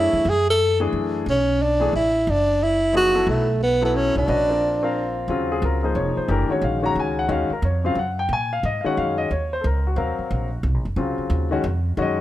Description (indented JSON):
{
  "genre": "modal jazz",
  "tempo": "179 BPM",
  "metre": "3/4",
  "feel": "swing 64% on 8ths",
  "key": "Eb dorian from 5.3 s",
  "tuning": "A4 = 440 Hz",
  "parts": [
    { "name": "breathy tenor saxophone", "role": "melody", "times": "0.0-5.1 s", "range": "A3 to A4", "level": "-19 LUFS", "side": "right 1 dB", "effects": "none" },
    { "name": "warm concert grand piano", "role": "accompaniment", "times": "0.0-12.2 s", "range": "Db3 to Bb5", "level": "-23 LUFS", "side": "left 3 dB", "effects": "none" },
    { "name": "upright bass", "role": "bass", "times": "0.0-12.2 s", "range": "F1 to Bb2", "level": "-24 LUFS", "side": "right 1 dB", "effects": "none" }
  ],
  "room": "light reverb",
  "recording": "none",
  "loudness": "-19 LUFS",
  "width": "side -14 dB against mid",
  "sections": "0.0-5.3 A section; 5.3-12.2 B section",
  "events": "none",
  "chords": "0.0 F#m9; 1.3 Bm7; 4.3 A#; 5.3 Ebm9"
}